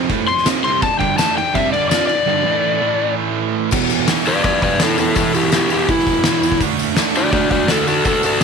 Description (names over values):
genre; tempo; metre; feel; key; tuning
garage rock duo or trio; 166 BPM; 4/4; straight; unclear; A4 = 440 Hz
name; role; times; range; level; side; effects
combo organ; sustained chords; 0.0-3.7 s; C4 to E5; -31 LUFS; left 13 dB; spring reverb
fuzz guitar; riff; 0.0-8.4 s; E2 to F4; -20 LUFS; right 14 dB; distortion
oversized low-tuned drum kit; drums; 0.1-8.4 s; crash cymbal, hi-hat, kick drum, ride cymbal, snare drum; -20 LUFS; left 1 dB; none
overdriven slide guitar; melody; 0.3-8.4 s; E4 to C6; -17 LUFS; left 4 dB; none
tambourine; percussion; 0.5-8.4 s; none; -31 LUFS; left 19 dB; none
room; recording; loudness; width
light reverb, small room ambience; 1960s-style stereo with parts hard left and right; -14 LUFS; side -5 dB against mid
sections
0.0-3.7 A section; 3.7-8.4 B section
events
electric slide guitar solo 0.0-3.7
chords
0.0 F5; 0.8 G5; 2.5 A5; 3.7 E5; 6.6 D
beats
0.10 0.46 | 0.83 1.19 1.55 1.91 | 2.28 2.64 3.00 3.36 | 3.72 4.08 4.44 4.80 | 5.16 5.53 5.88 6.25 | 6.61 6.97 7.33 7.69 | 8.05 8.41